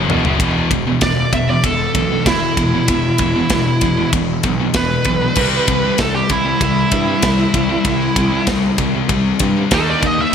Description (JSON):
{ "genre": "heavy metal", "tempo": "96 BPM", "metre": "4/4", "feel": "straight", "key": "E minor", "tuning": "A4 = 442 Hz", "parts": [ { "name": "distorted electric guitar", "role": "riff", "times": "0.0-10.3 s", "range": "E2 to D#4", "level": "-21 LUFS", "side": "right 9 dB", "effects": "distortion" }, { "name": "scooped high-gain guitar", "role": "riff", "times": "0.0-10.3 s", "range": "E2 to D#4", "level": "-20 LUFS", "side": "left 10 dB", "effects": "distortion" }, { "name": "fuzz picked electric bass", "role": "bass", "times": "0.0-10.2 s", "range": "E1 to G2", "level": "-22 LUFS", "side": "equal", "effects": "overdrive" }, { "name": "tight metal drum kit", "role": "drums", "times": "0.1-10.2 s", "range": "crash cymbal, kick drum, ride cymbal, snare drum, toms", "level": "-19 LUFS", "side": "equal", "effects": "none" }, { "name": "high-gain lead guitar", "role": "melody", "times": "1.0-10.3 s", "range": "E4 to E5", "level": "-19 LUFS", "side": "right 2 dB", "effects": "distortion, digital delay" } ], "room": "moderate lush hall reverb, RT60 2.1 s", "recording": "bright 1980s-style digital production", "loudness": "-13 LUFS", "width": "side -7 dB against mid", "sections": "0.4-10.3 A section", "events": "drum fill 0.0-0.4; lead electric guitar solo 0.4-10.3", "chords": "0.4 E5; 5.4 C; 9.7 D#5", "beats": "| 0.40 1.02 1.64 2.26 | 2.88 3.50 4.12 4.75 | 5.37 5.99 6.61 7.23 | 7.85 8.48 9.10 9.72 | 10.34" }